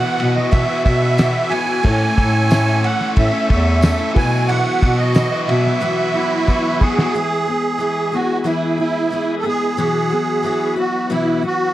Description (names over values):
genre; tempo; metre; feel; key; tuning
folk rock and heartland rock; 91 BPM; 4/4; straight; E major; A4 = 440 Hz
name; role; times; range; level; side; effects
musette accordion; melody; 0.0-11.7 s; E4 to G#5; -19 LUFS; right 3 dB; none
picked twelve-string acoustic guitar; accompaniment; 0.0-11.7 s; B2 to G#4; -22 LUFS; left 4 dB; none
warm upright piano; accompaniment; 0.0-6.8 s; E4 to E5; -33 LUFS; right 2 dB; none
bright tonewheel organ; sustained chords; 0.0-11.7 s; F#3 to B4; -30 LUFS; right 1 dB; overdrive, chorus vibrato, slow rotary speaker
biting overdriven guitar; riff; 0.0-7.1 s; A2 to A4; -24 LUFS; left 1 dB; spring reverb
mellow bass clarinet; bass; 0.0-5.7 s; E2 to B2; -18 LUFS; equal; none
cloth-damped thuddy drum kit; drums; 0.2-7.1 s; crash cymbal, kick drum, ride cymbal, snare drum; -18 LUFS; equal; vintage 12-bit sampler grit
tambourine; percussion; 1.2-5.3 s; none; -37 LUFS; right 4 dB; none
room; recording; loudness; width
little or no reverb; cassette tape; -15 LUFS; side -14 dB against mid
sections
0.0-7.1 A section; 7.1-11.7 A section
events
drum fill 6.5-7.1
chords
0.0 Bsus4; 1.8 Amaj7; 4.2 Bsus4; 7.1 E; 9.8 Bsus4